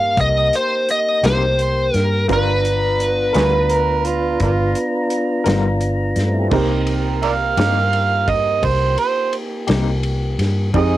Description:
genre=slow blues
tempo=57 BPM (dotted quarters)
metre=12/8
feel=straight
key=C minor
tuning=A4 = 440 Hz
part: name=biting lead guitar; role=melody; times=0.0-5.8 s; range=B4 to F5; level=-18 LUFS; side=equal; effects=overdrive, cassette tape
part: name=clear upright piano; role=accompaniment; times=0.0-11.0 s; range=B3 to A#5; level=-26 LUFS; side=right 7 dB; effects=cassette tape
part: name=tonewheel organ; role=sustained chords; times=0.0-11.0 s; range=Ab3 to A#5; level=-24 LUFS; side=equal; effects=slow rotary speaker, overdrive, cassette tape
part: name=vintage muted fingered electric bass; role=bass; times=0.0-11.0 s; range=G1 to G2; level=-20 LUFS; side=equal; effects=transformer saturation
part: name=natural country drum kit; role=drums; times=0.2-10.9 s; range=crash cymbal, hi-hat, kick drum, ride cymbal, snare drum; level=-24 LUFS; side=left 1 dB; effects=cassette tape
part: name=electric guitar through a small old amp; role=accompaniment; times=1.2-11.0 s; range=C3 to A#4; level=-24 LUFS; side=left 8 dB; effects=tremolo, cassette tape
part: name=overdriven harmonica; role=second line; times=3.4-11.0 s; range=A#3 to F5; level=-18 LUFS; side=right 6 dB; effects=cassette tape
room=light reverb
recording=home recording on cassette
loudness=-15 LUFS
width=side -14 dB against mid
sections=0.0-6.5 A section; 6.5-11.0 B section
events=harmonica solo 6.5-11.0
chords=0.0 Cm7; 2.3 G7#9; 6.5 Cm7

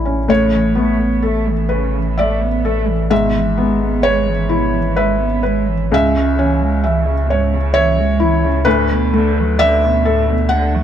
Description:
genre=neoclassical piano and strings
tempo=65 BPM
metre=3/4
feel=rubato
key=A major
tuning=A4 = 440 Hz
part: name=felt-muted upright piano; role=accompaniment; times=0.0-10.8 s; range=C#2 to F#5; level=-16 LUFS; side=left 1 dB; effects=none
part: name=saturated sub bass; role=bass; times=0.0-10.8 s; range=G#1 to D2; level=-19 LUFS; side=equal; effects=none
part: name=rich cello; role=second line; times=0.3-10.8 s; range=G#2 to B3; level=-21 LUFS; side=right 7 dB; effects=none
room=light reverb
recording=none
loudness=-13 LUFS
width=side -9 dB against mid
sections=0.3-10.8 A section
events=none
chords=0.3 Aadd9; 3.1 E/G#; 5.9 C#m; 8.7 D6

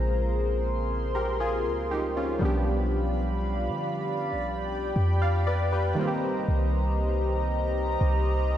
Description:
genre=R&B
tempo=59 BPM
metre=4/4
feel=straight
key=unclear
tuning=A4 = 438 Hz
part: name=warm analog keys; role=accompaniment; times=0.0-8.6 s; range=Db3 to F5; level=-31 LUFS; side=equal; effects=chorus
part: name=chorused pulse-width pad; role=sustained chords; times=0.0-8.6 s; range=G4 to C6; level=-30 LUFS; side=left 1 dB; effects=none
part: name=clean 808-style bass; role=bass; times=0.0-8.6 s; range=Bb1 to D3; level=-27 LUFS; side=equal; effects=none
room=moderate plate reverb, RT60 2.6 s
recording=dreamy mix soaked in reverb, nothing above 10.3 kHz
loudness=-24 LUFS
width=side -11 dB against mid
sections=0.0-8.6 A section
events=none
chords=0.0 Bbm9; 2.4 G7/B; 6.0 Cm7

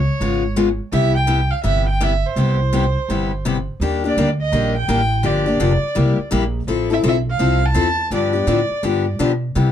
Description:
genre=acoustic string swing (jazz manouche)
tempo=167 BPM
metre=4/4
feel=swing 62% on 8ths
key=C major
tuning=A4 = 440 Hz
part: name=rich violin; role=melody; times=0.0-9.2 s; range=C5 to A5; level=-22 LUFS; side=right 2 dB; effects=none
part: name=upright bass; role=bass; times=0.0-9.7 s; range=F1 to C3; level=-19 LUFS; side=right 1 dB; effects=none
part: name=picked steel-string acoustic guitar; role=accompaniment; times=0.2-9.7 s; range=C3 to A4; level=-20 LUFS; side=left 5 dB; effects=none
room=light reverb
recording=dark, warm production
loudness=-16 LUFS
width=side -10 dB against mid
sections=0.0-3.8 A section; 3.8-9.7 B section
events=none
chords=0.0 Db7; 0.9 Cmaj7; 3.8 Ebmaj7; 5.2 Gm7; 6.0 C7; 6.7 Fmaj7; 8.1 G7

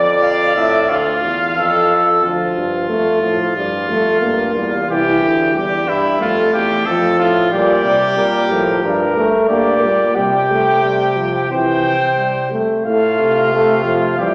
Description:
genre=classical, imitative canzona for brass ensemble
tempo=90 BPM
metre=4/4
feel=straight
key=F major from 7.5 s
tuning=A4 = 440 Hz
part: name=warm cornet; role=melody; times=0.0-2.2, 7.5-14.3 s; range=Bb4 to G5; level=-21 LUFS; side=equal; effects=none
part: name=bright trumpet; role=second line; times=0.0-14.3 s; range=E4 to D5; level=-21 LUFS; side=equal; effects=none
part: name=clear bass trombone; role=bass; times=0.0-14.3 s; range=C2 to E3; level=-23 LUFS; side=equal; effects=none
part: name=mellow trombone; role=accompaniment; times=2.2-14.3 s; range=E3 to Bb3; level=-19 LUFS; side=equal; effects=none
room=wet scoring stage reverb, RT60 1.4 s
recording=none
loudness=-16 LUFS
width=mono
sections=0.0-2.2 A section; 2.2-12.9 B section; 12.9-14.3 C section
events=none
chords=0.0 Dm/F; 0.9 Dm; 3.6 Gm; 4.9 C; 6.2 F; 7.5 Gm; 10.2 Csus4; 11.5 C; 12.9 F/A

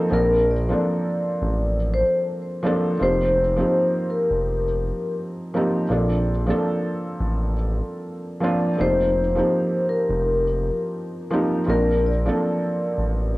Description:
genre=lo-fi hip hop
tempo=83 BPM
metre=4/4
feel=swing 59% on 16ths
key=Bb major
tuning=A4 = 440 Hz
part: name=felt-muted upright piano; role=accompaniment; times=0.0-13.4 s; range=F3 to Bb4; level=-23 LUFS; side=right 1 dB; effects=cassette tape, low-pass filter
part: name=vibraphone with soft mallets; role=melody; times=0.1-13.4 s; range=Bb4 to D5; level=-23 LUFS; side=left 1 dB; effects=low-pass filter, cassette tape, tape echo
part: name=smooth synth bass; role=bass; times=0.1-13.4 s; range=F1 to Bb1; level=-23 LUFS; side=equal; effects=none
room=moderate spring reverb, RT60 1.5 s, small room ambience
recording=home recording on cassette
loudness=-20 LUFS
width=side -19 dB against mid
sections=0.0-13.4 A section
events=none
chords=0.1 Bbmaj9; 3.0 F9sus4; 5.9 Bbmaj9; 8.8 F9sus4; 11.7 Bbmaj9

